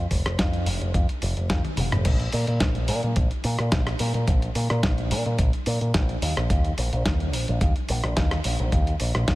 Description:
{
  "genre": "nu-disco, nu disco",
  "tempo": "108 BPM",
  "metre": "4/4",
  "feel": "straight",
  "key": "unclear",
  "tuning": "A4 = 440 Hz",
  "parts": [
    { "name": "picked electric bass with an envelope filter", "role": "bass", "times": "0.0-9.3 s", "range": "F1 to Bb2", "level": "-24 LUFS", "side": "equal", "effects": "tube saturation" },
    { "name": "dusty soul sampler-style drum kit", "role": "drums", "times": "0.1-9.3 s", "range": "crash cymbal, hi-hat, rim click, snare drum, toms", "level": "-28 LUFS", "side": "equal", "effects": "none" },
    { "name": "electronic kick drum", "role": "drums", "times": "0.1-9.3 s", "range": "none", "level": "-24 LUFS", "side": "equal", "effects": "none" }
  ],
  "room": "light reverb",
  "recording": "none",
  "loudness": "-21 LUFS",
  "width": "side -18 dB against mid",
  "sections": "0.0-2.1 A section; 2.1-9.3 B section",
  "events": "drum fill 1.5-2.1; drop 2.1-9.3",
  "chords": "none",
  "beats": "0.39 0.94 1.50 | 2.06 2.61 3.17 3.72 | 4.28 4.83 5.39 5.94 | 6.50 7.05 7.61 8.17 | 8.72 9.28"
}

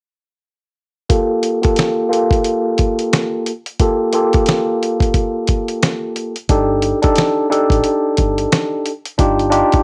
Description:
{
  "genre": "hip hop, boom-bap hip-hop",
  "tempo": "89 BPM",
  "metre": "4/4",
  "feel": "swing 59% on 16ths",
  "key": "G minor",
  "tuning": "A4 = 440 Hz",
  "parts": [
    { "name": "tine electric piano", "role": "accompaniment", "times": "1.1-9.8 s", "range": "Bb3 to A4", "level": "-18 LUFS", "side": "equal", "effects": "cassette tape, high-pass filter, low-pass filter" },
    { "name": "dusty soul sampler-style drum kit", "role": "drums", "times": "1.1-9.8 s", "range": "hi-hat, kick drum, snare drum", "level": "-19 LUFS", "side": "equal", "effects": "cassette tape" },
    { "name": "deep dub fingered electric bass", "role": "bass", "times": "6.5-9.6 s", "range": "G1 to A1", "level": "-25 LUFS", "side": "equal", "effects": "none" }
  ],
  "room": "light reverb",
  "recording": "home recording on cassette",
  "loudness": "-16 LUFS",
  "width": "mono",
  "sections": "1.1-9.8 A section",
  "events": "filter sweep on tine electric piano 1.1-9.8",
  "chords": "1.1 Gm9; 6.5 Ebmaj7#11/G; 9.2 Ebmaj9/G",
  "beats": "| 1.10 1.77 2.45 3.12 | 3.80 4.47 5.14 5.82 | 6.49 7.17 7.84 8.52 | 9.19"
}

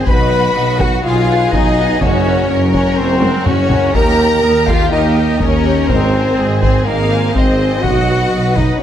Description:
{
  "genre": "cinematic, epic orchestral film score",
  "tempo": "124 BPM",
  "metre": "4/4",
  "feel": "straight",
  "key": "unclear",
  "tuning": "A4 = 440 Hz",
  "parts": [
    { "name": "rich symphonic violin section", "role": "melody", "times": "0.0-8.8 s", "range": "F#4 to F5", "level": "-23 LUFS", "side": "left 3 dB", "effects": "none" },
    { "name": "concert flute", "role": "second line", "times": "0.0-8.8 s", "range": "Bb4 to B5", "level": "-23 LUFS", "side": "left 2 dB", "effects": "none" },
    { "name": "warm symphonic violin section", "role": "second line", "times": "0.0-8.8 s", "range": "Bb4 to B5", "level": "-23 LUFS", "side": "left 3 dB", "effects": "none" },
    { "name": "rich symphonic viola section", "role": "accompaniment", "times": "0.0-8.8 s", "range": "F#4 to Ab5", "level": "-25 LUFS", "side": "equal", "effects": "none" },
    { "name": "dark French horn section", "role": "sustained chords", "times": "0.0-8.8 s", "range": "Bb3 to B4", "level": "-17 LUFS", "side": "left 3 dB", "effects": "none" },
    { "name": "rich symphonic cello section", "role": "bass", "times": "0.0-8.8 s", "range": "Bb3 to B4", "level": "-22 LUFS", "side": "equal", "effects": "none" },
    { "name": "warm tuba", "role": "bass", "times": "0.0-8.8 s", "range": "Gb1 to Eb2", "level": "-20 LUFS", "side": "right 3 dB", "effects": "none" },
    { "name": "warm symphonic double bass section", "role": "bass", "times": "0.1-8.8 s", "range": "Ab1 to Gb2", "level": "-18 LUFS", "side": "right 2 dB", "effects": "none" },
    { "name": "taiko ensemble", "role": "drums", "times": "0.1-8.8 s", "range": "none", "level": "-19 LUFS", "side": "equal", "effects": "none" }
  ],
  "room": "moderate scoring stage reverb, RT60 1.7 s",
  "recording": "none",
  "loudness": "-11 LUFS",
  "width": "side -10 dB against mid",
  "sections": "0.0-8.8 A section",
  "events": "drum fill 3.2-4.0",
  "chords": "0.1 B; 2.0 Gb; 4.0 Eb; 5.9 Ab; 7.8 B",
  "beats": "| 0.07 0.55 1.04 1.52 | 2.01 2.50 2.98 3.47 | 3.95 4.44 4.92 5.41 | 5.90 6.38 6.87 7.35 | 7.84 8.32 8.81"
}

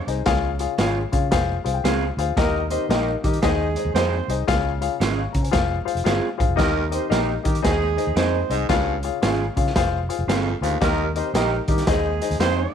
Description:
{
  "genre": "uptempo 1960s-style soul",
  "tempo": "114 BPM",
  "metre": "4/4",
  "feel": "swing 65% on 8ths",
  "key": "Eb mixolydian",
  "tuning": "A4 = 439 Hz",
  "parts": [
    { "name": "dark horn section", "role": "second line", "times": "0.0-12.7 s", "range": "G3 to C5", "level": "-26 LUFS", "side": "right 11 dB", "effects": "none" },
    { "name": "dark grand piano", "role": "accompaniment", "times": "0.0-12.7 s", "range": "Db3 to Db6", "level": "-24 LUFS", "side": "left 12 dB", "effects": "none" },
    { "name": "vintage muted fingered electric bass", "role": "bass", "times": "0.1-12.6 s", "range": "F1 to Eb3", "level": "-26 LUFS", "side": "equal", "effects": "none" },
    { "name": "raw garage drum kit", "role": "drums", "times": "0.1-12.6 s", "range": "hi-hat, kick drum, snare drum", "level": "-24 LUFS", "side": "right 1 dB", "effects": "none" },
    { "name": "electric guitar through a small old amp", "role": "stabs", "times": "0.8-12.6 s", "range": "Bb3 to Ab4", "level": "-28 LUFS", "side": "right 12 dB", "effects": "lush chorus" },
    { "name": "edgy baritone saxophone", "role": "riff", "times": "6.6-11.1 s", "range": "Eb2 to Ab2", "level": "-30 LUFS", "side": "right 12 dB", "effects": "none" }
  ],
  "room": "light reverb, studio ambience",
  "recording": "1960s-style stereo with parts hard left and right",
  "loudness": "-19 LUFS",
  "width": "side -8 dB against mid",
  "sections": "0.0-12.7 A section",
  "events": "grand piano fill 1.3-2.4",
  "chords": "0.3 Db; 1.3 Fm; 2.4 Eb; 3.4 Ab/Eb; 4.5 Db; 5.5 Fm; 6.6 Eb; 7.6 Ab/Eb; 8.7 Db; 9.8 Fm; 10.8 Eb; 11.9 Ab/Eb",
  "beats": "| 0.27 0.79 1.32 1.85 | 2.37 2.90 3.43 3.95 | 4.48 5.01 5.54 6.06 | 6.59 7.12 7.64 8.17 | 8.70 9.23 9.76 10.29 | 10.81 11.34 11.87 12.40"
}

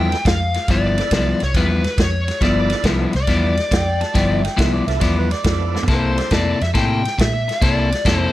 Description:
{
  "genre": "electric blues shuffle",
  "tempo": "139 BPM",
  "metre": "4/4",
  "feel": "swing 68% on 8ths",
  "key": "G mixolydian",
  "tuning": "A4 = 439 Hz",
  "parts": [
    { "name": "smooth overdriven lead guitar", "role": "melody", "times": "0.0-8.3 s", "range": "B4 to G5", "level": "-23 LUFS", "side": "left 1 dB", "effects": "plate reverb" },
    { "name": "bright tonewheel organ", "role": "accompaniment", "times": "0.0-6.3 s", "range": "F3 to A4", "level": "-28 LUFS", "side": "right 7 dB", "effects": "slow rotary speaker, overdrive, chorus vibrato, plate reverb" },
    { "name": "electric guitar at the edge of break-up", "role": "riff", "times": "0.0-8.3 s", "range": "G2 to A4", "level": "-20 LUFS", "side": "left 3 dB", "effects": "none" },
    { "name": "vintage muted fingered electric bass", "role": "bass", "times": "0.0-8.3 s", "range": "G1 to Bb2", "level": "-21 LUFS", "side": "equal", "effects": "none" },
    { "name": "vintage drum kit", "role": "drums", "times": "0.1-8.2 s", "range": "kick drum, ride cymbal, snare drum, toms", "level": "-21 LUFS", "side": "equal", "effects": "none" },
    { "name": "overdriven harmonica", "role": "second line", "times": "3.7-5.8 s", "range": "B4 to A5", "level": "-26 LUFS", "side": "right 4 dB", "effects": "plate reverb" }
  ],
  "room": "light reverb",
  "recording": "none",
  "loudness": "-15 LUFS",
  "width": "side -15 dB against mid",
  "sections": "0.0-8.3 A section",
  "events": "drum fill 5.7",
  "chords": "0.0 G13; 5.9 C13",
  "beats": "0.26 | 0.69 1.12 1.55 1.99 | 2.42 2.85 3.29 3.72 | 4.15 4.58 5.02 5.45 | 5.88 6.31 6.75 7.18 | 7.61 8.04"
}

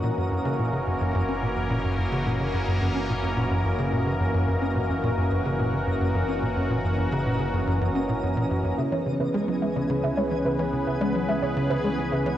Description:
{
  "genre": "ambient, sequencer-driven space music",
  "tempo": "108 BPM",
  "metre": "4/4",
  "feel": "straight",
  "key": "unclear",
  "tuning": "A4 = 440 Hz",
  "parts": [
    { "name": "sweeping resonant pad", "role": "sustained chords", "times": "0.0-12.4 s", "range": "E3 to B4", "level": "-26 LUFS", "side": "equal", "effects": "chorus, shimmer reverb" },
    { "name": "tight sequencer bass", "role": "riff", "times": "0.0-12.3 s", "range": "F#2 to C#4", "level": "-26 LUFS", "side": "equal", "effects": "wide subtle chorus, ping-pong delay" },
    { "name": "fat analog bass", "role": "bass", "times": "0.0-12.4 s", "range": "F#1 to C#2", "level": "-34 LUFS", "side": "equal", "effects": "none" },
    { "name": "twinkling granular texture", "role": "texture", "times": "0.0-12.4 s", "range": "D#4 to G#5", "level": "-41 LUFS", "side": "right 1 dB", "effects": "built-in reverb, shimmer reverb" },
    { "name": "warbly dusty pluck", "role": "arpeggios", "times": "8.8-12.3 s", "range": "G#4 to E5", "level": "-30 LUFS", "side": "right 1 dB", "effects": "chorus, auto-pan, ping-pong delay, shimmer reverb" }
  ],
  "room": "wet plate reverb, RT60 2.2 s",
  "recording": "worn, warbling old tape, cassette tape, warbly pitch drift",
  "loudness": "-23 LUFS",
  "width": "side -12 dB against mid",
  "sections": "0.0-12.4 A section",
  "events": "fade-in on synth texture 0.0-12.4",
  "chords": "0.0 F#7; 8.8 C#m7",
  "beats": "0.45 1.01 1.56 | 2.12 2.67 3.23 3.79 | 4.34 4.90 5.45 6.01 | 6.56 7.12 7.67 8.23 | 8.79 9.34 9.90 10.45 | 11.01 11.56 12.12"
}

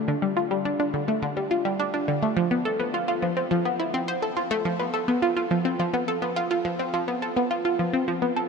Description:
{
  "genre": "ambient",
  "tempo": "105 BPM",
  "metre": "4/4",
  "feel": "straight",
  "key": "unclear",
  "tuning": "A4 = 440 Hz",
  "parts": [
    { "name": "analog pluck", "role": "solo", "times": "0.1-8.5 s", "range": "D3 to C5", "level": "-23 LUFS", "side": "equal", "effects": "chorus, phaser, ping-pong delay" }
  ],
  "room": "wet huge ambient reverb, RT60 6.9 s",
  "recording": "none",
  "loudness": "-23 LUFS",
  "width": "side -5 dB against mid",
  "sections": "0.0-8.5 A section",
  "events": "none",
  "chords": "none",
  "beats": "| 0.08 0.65 1.22 1.79 | 2.36 2.94 3.51 4.08 | 4.65 5.22 5.79 6.36 | 6.93 7.51 8.08"
}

